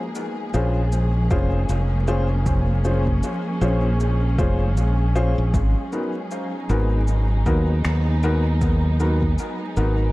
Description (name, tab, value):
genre	ambient dub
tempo	78 BPM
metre	4/4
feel	swing 58% on 16ths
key	unclear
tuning	A4 = 442 Hz
part	dark studio string section	sustained chords	0.0-10.1 s	E#3 to G#4	-28 LUFS	equal	none
part	electronic cabasa and finger snaps	drums	0.2-9.9 s	none	-37 LUFS	left 1 dB	small room ambience, dub echo
part	warm upright piano	stabs	0.5-10.0 s	B3 to B#4	-27 LUFS	left 2 dB	dub echo
part	modern bright fingered electric bass	bass	0.5-10.1 s	E#1 to D#2	-19 LUFS	equal	tube saturation
part	electronic kick drum	drums	1.3-9.4 s	none	-23 LUFS	equal	overdrive, small room ambience
room	little or no reverb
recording	dark, warm production, vinyl crackle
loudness	-18 LUFS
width	side -19 dB against mid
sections	0.0-10.1 A section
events	none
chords	0.0 A#m7; 5.5 G#m7